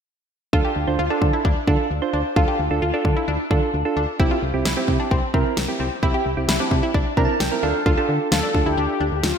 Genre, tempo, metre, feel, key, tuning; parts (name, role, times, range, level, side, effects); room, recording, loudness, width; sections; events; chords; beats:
synth-pop; 131 BPM; 4/4; straight; D minor; A4 = 441 Hz
soft electric-piano-like synth keys; accompaniment; 0.5-9.0 s; C4 to Bb5; -23 LUFS; right 4 dB; chorus
analog pluck; arpeggios; 0.5-9.2 s; C4 to G4; -26 LUFS; left 2 dB; chorus, phaser, ping-pong delay
solid FM bass; bass; 0.5-9.3 s; C2 to D3; -25 LUFS; equal
pop drum kit; drums; 0.5-9.3 s; kick drum, snare drum; -21 LUFS; left 1 dB; gated reverb
mellow synth brass; melody; 8.3-9.4 s; F4 to A4; -24 LUFS; left 4 dB; chorus
moderate lush hall reverb, RT60 1.6 s, digital ambience; bright 1980s-style digital production; -18 LUFS; side -7 dB against mid
0.5-7.9 A section; 7.9-9.4 B section
synth keys fill 6.9-7.9
0.5 Dm; 4.2 C; 7.6 Dm
| 0.53 0.99 1.45 1.91 | 2.36 2.82 3.28 3.74 | 4.20 4.65 5.11 5.57 | 6.03 6.49 6.94 7.40 | 7.86 8.32 8.78 9.23